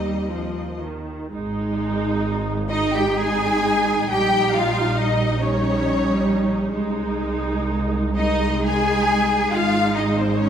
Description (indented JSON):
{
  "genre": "classical, slow romantic movement for string orchestra",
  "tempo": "44 BPM (dotted quarters)",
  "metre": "6/8",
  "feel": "uneven beats, rubato",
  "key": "Ab major",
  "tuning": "A4 = 439 Hz",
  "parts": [
    { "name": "rich studio violin section", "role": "melody", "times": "0.0-10.5 s", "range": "C5 to Ab5", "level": "-27 LUFS", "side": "left 6 dB", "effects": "none" },
    { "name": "clear symphonic violin section", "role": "second line", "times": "0.0-10.5 s", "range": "Eb4 to Ab5", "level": "-25 LUFS", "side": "left 2 dB", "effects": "none" },
    { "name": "rich studio viola section", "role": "accompaniment", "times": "0.0-10.5 s", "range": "Eb3 to Eb4", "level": "-23 LUFS", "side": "right 1 dB", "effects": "none" },
    { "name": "rich symphonic cello section", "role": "bass", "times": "0.0-10.5 s", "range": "C4 to Ab4", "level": "-24 LUFS", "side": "right 2 dB", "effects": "none" },
    { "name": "rich symphonic double bass section", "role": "bass", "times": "0.0-10.5 s", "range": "Ab1 to Eb2", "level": "-26 LUFS", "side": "right 2 dB", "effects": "none" }
  ],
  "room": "wet concert hall reverb, RT60 1.9 s",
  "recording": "none",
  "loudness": "-18 LUFS",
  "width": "side -8 dB against mid",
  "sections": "0.0-1.3 A section; 1.3-10.5 B section",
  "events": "none",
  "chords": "0.0 Eb; 1.3 Ab5; 4.1 Eb7/Bb; 6.7 Ab/C; 9.5 Ab"
}